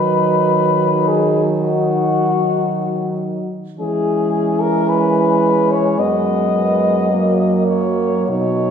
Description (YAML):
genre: classical, lyrical piece for horn quartet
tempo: 48-56 BPM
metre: 4/4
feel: rubato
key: B major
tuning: A4 = 440 Hz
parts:
  - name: clear French horn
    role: melody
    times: 0.0-8.7 s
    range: F#4 to D#5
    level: -18 LUFS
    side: left 3 dB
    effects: none
  - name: warm French horn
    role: second line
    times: 0.0-8.7 s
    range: A#3 to D#4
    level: -22 LUFS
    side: right 6 dB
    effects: none
  - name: mellow French horn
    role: accompaniment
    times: 0.0-8.7 s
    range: F#3 to G#3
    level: -21 LUFS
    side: left 2 dB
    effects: none
  - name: mellow French horn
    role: bass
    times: 0.0-8.7 s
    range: F#2 to E3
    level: -20 LUFS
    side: right 2 dB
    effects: none
room: wet recital hall reverb, RT60 1.7 s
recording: recorded in a church or concert hall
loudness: -14 LUFS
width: side -7 dB against mid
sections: 0.0-8.7 A section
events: none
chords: 0.0 B/D#; 3.8 C#m/E; 6.0 B/F#; 7.1 F#